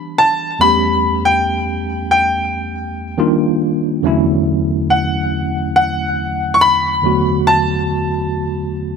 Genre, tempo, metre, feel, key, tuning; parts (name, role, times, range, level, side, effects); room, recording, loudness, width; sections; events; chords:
R&B; 70 BPM; 4/4; straight; A4 = 441 Hz
bright baby grand piano; melody; 0.0-9.0 s; F#5 to C#6; -15 LUFS; left 1 dB; digital delay
tine electric piano; accompaniment; 0.0-9.0 s; E2 to G4; -17 LUFS; right 1 dB; overdrive, fast stereo tremolo
light reverb, studio reverb; -14 LUFS; side -6 dB against mid
0.0-9.0 A section
0.0 Em7; 0.6 A9/E; 3.2 D#maj9; 4.0 Dmaj9/E; 7.0 Bm7/E